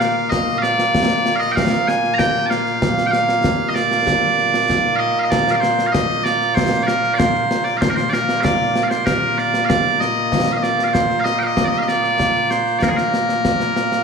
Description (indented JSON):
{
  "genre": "scottish traditional, Scottish pipe music",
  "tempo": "96 BPM",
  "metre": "4/4",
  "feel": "straight",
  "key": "Bb major",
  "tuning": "A4 = 440 Hz",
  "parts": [
    { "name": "loud bright bagpipes", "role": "melody", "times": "0.0-14.0 s", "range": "Bb2 to Bb5", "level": "-16 LUFS", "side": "right 1 dB", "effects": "none" },
    { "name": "concert snare drum and concert bass drum", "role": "drums", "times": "0.0-14.0 s", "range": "none", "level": "-20 LUFS", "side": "left 1 dB", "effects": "none" }
  ],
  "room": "moderate concert hall reverb, RT60 2.1 s",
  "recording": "studio ambience",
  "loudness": "-15 LUFS",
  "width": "side -5 dB against mid",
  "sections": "0.0-14.0 A section",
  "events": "none",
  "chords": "none"
}